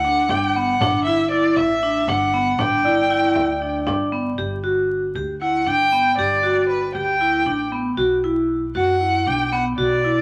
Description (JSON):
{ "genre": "contemporary instrumental, chamber music in an uneven meter", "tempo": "234 BPM (eighths)", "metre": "7/8", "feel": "straight", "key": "G major", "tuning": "A4 = 442 Hz", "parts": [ { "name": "warm violin", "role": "melody", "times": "0.0-10.2 s", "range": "B4 to G5", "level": "-22 LUFS", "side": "equal", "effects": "none" }, { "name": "vibraphone with hard mallets", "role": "arpeggios", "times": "0.0-10.2 s", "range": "B3 to G4", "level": "-23 LUFS", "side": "equal", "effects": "none" }, { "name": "upright bass", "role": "bass", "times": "0.0-10.2 s", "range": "G1 to F#2", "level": "-32 LUFS", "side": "equal", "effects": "none" }, { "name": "frame drum", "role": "percussion", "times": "0.3-4.3 s", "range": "none", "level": "-30 LUFS", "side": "equal", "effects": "none" }, { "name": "large celesta", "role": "texture", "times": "2.8-4.6 s", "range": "D5 to G5", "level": "-28 LUFS", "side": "equal", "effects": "none" } ], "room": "moderate spring reverb, RT60 2.5 s", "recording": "vinyl crackle", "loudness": "-20 LUFS", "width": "mono", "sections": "0.0-4.4 A section; 4.4-10.2 A section", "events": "none", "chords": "0.0 G; 4.4 G5; 8.0 B5" }